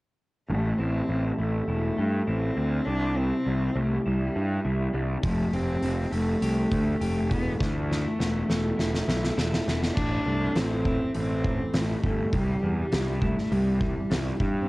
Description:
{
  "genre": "quiet-loud alternative rock",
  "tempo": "101 BPM",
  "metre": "4/4",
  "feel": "straight",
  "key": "A minor",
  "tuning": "A4 = 440 Hz",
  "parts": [
    { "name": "warm cello", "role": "melody", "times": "0.5-14.7 s", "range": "G3 to D4", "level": "-30 LUFS", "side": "left 1 dB", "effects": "analog delay" },
    { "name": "electric guitar through a small old amp", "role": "arpeggios", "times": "0.5-14.7 s", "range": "A2 to G4", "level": "-32 LUFS", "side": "equal", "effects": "cassette tape" },
    { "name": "fuzz picked electric bass", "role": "bass", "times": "0.5-14.7 s", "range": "E1 to G2", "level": "-27 LUFS", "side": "equal", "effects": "overdrive" },
    { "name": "oversized low-tuned drum kit", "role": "drums", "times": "5.2-14.5 s", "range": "crash cymbal, hi-hat, kick drum, snare drum", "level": "-30 LUFS", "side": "equal", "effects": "cassette tape" }
  ],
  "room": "light reverb, studio reverb",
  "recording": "home recording on cassette",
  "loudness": "-24 LUFS",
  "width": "side -20 dB against mid",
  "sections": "0.5-10.0 A section; 10.0-14.7 B section",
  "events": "drum fill 7.6-10.0",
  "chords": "0.5 Am; 2.9 Cadd9; 5.2 Fadd9; 7.3 Esus4; 10.0 Am; 12.3 Cadd9"
}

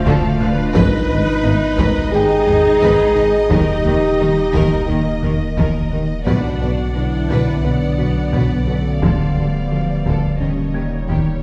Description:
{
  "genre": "cinematic, hybrid orchestral and electronic film score",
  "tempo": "87 BPM",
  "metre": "4/4",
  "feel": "straight",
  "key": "unclear",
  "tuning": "A4 = 440 Hz",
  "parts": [
    { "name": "warm chamber violin section", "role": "melody", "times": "0.0-11.4 s", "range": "C#5 to F#5", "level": "-32 LUFS", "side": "equal", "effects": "none" },
    { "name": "rich symphonic violin section", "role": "second line", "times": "0.0-11.4 s", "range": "G4 to D#5", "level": "-30 LUFS", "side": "equal", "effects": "none" },
    { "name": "rich symphonic viola section", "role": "accompaniment", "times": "0.0-11.4 s", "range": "F3 to B4", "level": "-28 LUFS", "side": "equal", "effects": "none" },
    { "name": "mellow French horn section", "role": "sustained chords", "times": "0.0-11.4 s", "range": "A3 to G#4", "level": "-22 LUFS", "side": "equal", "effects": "none" },
    { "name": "warbly tape-like pad", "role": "sustained chords", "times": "0.0-11.4 s", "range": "B2 to D#5", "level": "-28 LUFS", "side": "equal", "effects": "none" },
    { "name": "warm sub bass", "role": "bass", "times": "0.0-11.4 s", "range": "D1 to B1", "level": "-27 LUFS", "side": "equal", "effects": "none" },
    { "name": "warm grand piano", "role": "texture", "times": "0.0-11.4 s", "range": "E4 to G#6", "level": "-35 LUFS", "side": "equal", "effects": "none" },
    { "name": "thumb-piano-like synth pluck", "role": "arpeggios", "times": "0.1-11.3 s", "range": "D3 to B4", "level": "-28 LUFS", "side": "equal", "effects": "none" },
    { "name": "mellow tuba", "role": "bass", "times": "0.1-11.2 s", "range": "G#1 to D#2", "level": "-26 LUFS", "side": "equal", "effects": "none" },
    { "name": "warm symphonic cello section", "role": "bass", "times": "0.1-11.2 s", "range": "G#2 to D#3", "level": "-28 LUFS", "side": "equal", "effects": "none" },
    { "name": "warm symphonic double bass section", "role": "bass", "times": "0.1-11.2 s", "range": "G#1 to D#2", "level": "-28 LUFS", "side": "equal", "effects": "none" },
    { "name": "taiko ensemble", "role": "drums", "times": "0.1-11.4 s", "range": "none", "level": "-24 LUFS", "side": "equal", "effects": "none" }
  ],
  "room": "wet scoring stage reverb, RT60 1.7 s",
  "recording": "heard from further back in the room",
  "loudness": "-17 LUFS",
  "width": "mono",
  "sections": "0.0-11.4 A section",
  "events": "none",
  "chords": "0.0 Dm; 0.7 G#m; 3.5 D#; 6.3 Bm; 9.0 Dm; 10.4 D#7"
}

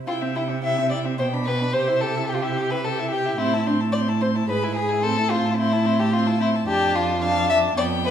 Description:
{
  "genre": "quick classical-period movement for string quartet",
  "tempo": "110 BPM",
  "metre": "3/4",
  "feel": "straight",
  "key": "C major",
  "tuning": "A4 = 441 Hz",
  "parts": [
    { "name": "rich violin", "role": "melody", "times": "0.1-8.1 s", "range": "E5 to C6", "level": "-30 LUFS", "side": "left 9 dB", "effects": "none" },
    { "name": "warm violin", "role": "second line", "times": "0.1-8.1 s", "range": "D4 to F5", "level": "-23 LUFS", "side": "left 2 dB", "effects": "none" },
    { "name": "clear viola", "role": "accompaniment", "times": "0.1-8.1 s", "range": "B3 to G#4", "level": "-28 LUFS", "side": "right 3 dB", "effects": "none" },
    { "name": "rich cello", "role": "bass", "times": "0.1-8.1 s", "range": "F2 to C3", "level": "-24 LUFS", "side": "right 3 dB", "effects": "none" }
  ],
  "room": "wet recital hall reverb, RT60 1.5 s",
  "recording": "minimal, uncompressed stereo recording",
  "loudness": "-20 LUFS",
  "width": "side -9 dB against mid",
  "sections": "0.1-8.1 A section",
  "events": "none",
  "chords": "0.1 C; 1.2 G/B; 1.7 C; 3.4 Am; 4.5 E/G#; 5.0 Am; 6.7 Dm/F"
}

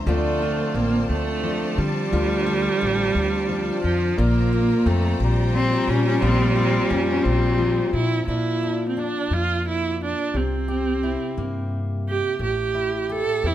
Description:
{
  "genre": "acoustic folk-pop ballad",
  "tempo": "58 BPM (dotted quarters)",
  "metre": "6/8",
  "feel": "straight",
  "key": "unclear",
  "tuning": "A4 = 442 Hz",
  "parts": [
    { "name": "fingerpicked steel-string acoustic guitar", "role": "accompaniment", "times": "0.0-13.5 s", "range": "A2 to G4", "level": "-26 LUFS", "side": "left 4 dB", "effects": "none" },
    { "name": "warm symphonic string section", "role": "sustained chords", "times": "0.0-8.2 s", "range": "D4 to Bb5", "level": "-32 LUFS", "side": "left 2 dB", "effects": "none" },
    { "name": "rich viola", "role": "second line", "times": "0.1-13.5 s", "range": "F3 to A4", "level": "-24 LUFS", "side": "right 5 dB", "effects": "none" },
    { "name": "upright bass", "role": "bass", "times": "0.1-13.5 s", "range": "A1 to D3", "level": "-24 LUFS", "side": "equal", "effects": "none" },
    { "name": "warm cello", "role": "melody", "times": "5.6-8.0 s", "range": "C4 to Db4", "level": "-24 LUFS", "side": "left 4 dB", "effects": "none" }
  ],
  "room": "light reverb",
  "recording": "none",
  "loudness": "-20 LUFS",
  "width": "side -12 dB against mid",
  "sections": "0.0-8.3 A section; 8.3-13.5 B section",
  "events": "viola solo 8.3-13.5",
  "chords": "0.1 Dm7; 4.2 Bbsus2; 8.3 Bb; 10.3 C7; 12.4 A7(no3)"
}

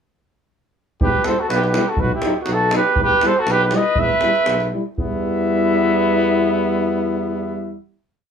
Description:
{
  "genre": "balkan folk, Balkan brass band",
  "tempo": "120 BPM",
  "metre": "2/4",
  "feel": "swing 55% on 16ths",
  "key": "E harmonic minor",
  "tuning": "A4 = 440 Hz",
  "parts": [
    { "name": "warm flugelhorn", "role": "melody", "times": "1.0-7.8 s", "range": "F#4 to E5", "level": "-20 LUFS", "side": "right 3 dB", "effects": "none" },
    { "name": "clear trumpet", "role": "second line", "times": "1.0-7.8 s", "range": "B3 to B4", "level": "-25 LUFS", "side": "left 3 dB", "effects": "none" },
    { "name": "warm tuba", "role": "bass", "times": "1.0-7.8 s", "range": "B1 to E2", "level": "-24 LUFS", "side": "equal", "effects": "none" },
    { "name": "davul", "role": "percussion", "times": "1.0-5.2 s", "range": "none", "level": "-23 LUFS", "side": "right 1 dB", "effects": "none" },
    { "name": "mellow euphonium", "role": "accompaniment", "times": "1.3-7.8 s", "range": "F#3 to G3", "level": "-24 LUFS", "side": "right 3 dB", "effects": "none" },
    { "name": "warm trombone", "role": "accompaniment", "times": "1.3-7.8 s", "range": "D#4 to E4", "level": "-23 LUFS", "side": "left 9 dB", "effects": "none" }
  ],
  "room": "moderate studio ambience, RT60 0.5 s",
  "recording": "band playing live in one room",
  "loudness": "-16 LUFS",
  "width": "side -7 dB against mid",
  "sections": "1.0-5.0 A section; 5.0-7.0 final chord",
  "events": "none",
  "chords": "1.0 Em; 2.0 B; 3.0 Em"
}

